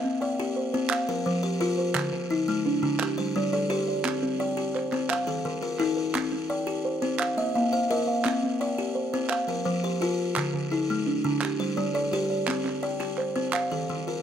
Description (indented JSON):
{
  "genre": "southern african traditional, mbira-style interlocking cycle",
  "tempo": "114 BPM (dotted quarters)",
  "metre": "12/8",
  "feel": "straight",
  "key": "C equiheptatonic",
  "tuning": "A4 = 440 Hz",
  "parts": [
    { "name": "buzzing kalimba", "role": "arpeggios", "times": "0.0-14.2 s", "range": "D3-29c to F5", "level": "-27 LUFS", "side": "left 3 dB", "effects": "none" },
    { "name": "kalimba", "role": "arpeggios", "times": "0.0-14.2 s", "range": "D3-29c to G5", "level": "-29 LUFS", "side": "right 4 dB", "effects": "none" },
    { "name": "group handclap", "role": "percussion", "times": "0.9-13.7 s", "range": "none", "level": "-30 LUFS", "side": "right 7 dB", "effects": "none" }
  ],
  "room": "light reverb",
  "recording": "close, detailed microphones",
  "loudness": "-24 LUFS",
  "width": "side -8 dB against mid",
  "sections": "0.0-14.2 A section",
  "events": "none",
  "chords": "0.0 C5; 0.9 F5; 2.0 D5; 3.0 G5; 4.1 C5; 5.1 Eb5; 6.2 C5; 7.2 Bb5; 8.3 Cm; 9.3 F5; 10.4 D5; 11.4 G5; 12.5 C5; 13.5 Eb5"
}